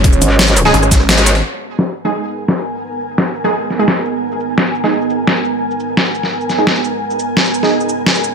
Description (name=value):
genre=dark technical drum and bass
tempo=172 BPM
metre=4/4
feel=straight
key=G# minor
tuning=A4 = 440 Hz
part: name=dark analog pad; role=sustained chords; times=0.0-8.3 s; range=G#3 to C#5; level=-25 LUFS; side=right 2 dB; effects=chorus, sidechain pumping
part: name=orchestra-hit-like synth stab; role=stabs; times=0.0-8.3 s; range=G#3 to G#4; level=-18 LUFS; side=right 2 dB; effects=built-in reverb, cassette tape, ping-pong delay
part: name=snarling distorted saw bass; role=bass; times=0.0-1.1 s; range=G#1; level=-16 LUFS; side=equal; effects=distortion, overdrive, sidechain pumping
part: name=breakbeat sampler-style drum kit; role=drums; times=0.0-1.4 s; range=hi-hat, snare drum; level=-21 LUFS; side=equal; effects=high-pass filter on hats, high-pass filter on snare, high-pass filter on room
part: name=dubstep drum kit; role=drums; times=0.0-8.3 s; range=cabasa, crash cymbal, hi-hat, rim click, snare drum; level=-15 LUFS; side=left 1 dB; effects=overdrive, low-pass filter on hats, low-pass filter on perc, low-pass filter on snare, low-pass filter on cymbals
part: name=electronic kick drum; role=drums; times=0.0-1.0 s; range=none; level=-11 LUFS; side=equal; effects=overdrive
part: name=metallic wobble bass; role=bass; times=0.2-1.4 s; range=G#1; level=-13 LUFS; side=equal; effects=chorus
part: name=ethereal airy pad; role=texture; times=2.2-8.3 s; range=B3 to G#5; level=-18 LUFS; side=right 2 dB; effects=ensemble chorus, built-in reverb, sidechain pumping
room=moderate digital room reverb, RT60 1.0 s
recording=none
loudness=-12 LUFS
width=side -6 dB against mid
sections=0.0-1.4 A section; 1.4-8.3 B section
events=drop 0.0-1.4; kick drops out 1.1-1.4; band accent 1.1; filter sweep on drum 1.4-8.3; filter sweep on analog synth pad 1.4-8.3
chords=0.0 G#5; 1.4 G#madd9